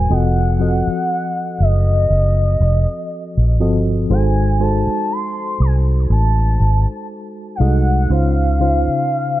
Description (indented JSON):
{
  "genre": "contemporary R&B",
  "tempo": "60 BPM",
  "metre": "4/4",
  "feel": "swing 54% on 16ths",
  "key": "unclear",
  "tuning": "A4 = 437 Hz",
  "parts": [
    { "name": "gliding portamento lead", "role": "melody", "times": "0.0-9.4 s", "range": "Eb5 to C6", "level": "-22 LUFS", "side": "equal", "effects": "chorus, ping-pong delay" },
    { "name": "FM electric piano with auto-pan", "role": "accompaniment", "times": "0.0-9.4 s", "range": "Ab2 to Eb5", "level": "-21 LUFS", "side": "equal", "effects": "none" },
    { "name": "vintage muted fingered electric bass", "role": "bass", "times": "0.0-8.9 s", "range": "F1 to Db2", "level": "-15 LUFS", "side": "equal", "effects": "none" }
  ],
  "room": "digital ambience",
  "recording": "dark, warm production, low-pass filter",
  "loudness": "-14 LUFS",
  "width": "side -15 dB against mid",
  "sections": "0.0-9.4 A section",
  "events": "filter sweep 0.0-9.4",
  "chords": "0.1 F7b9; 4.1 Ab7b9; 8.1 Dbmaj9"
}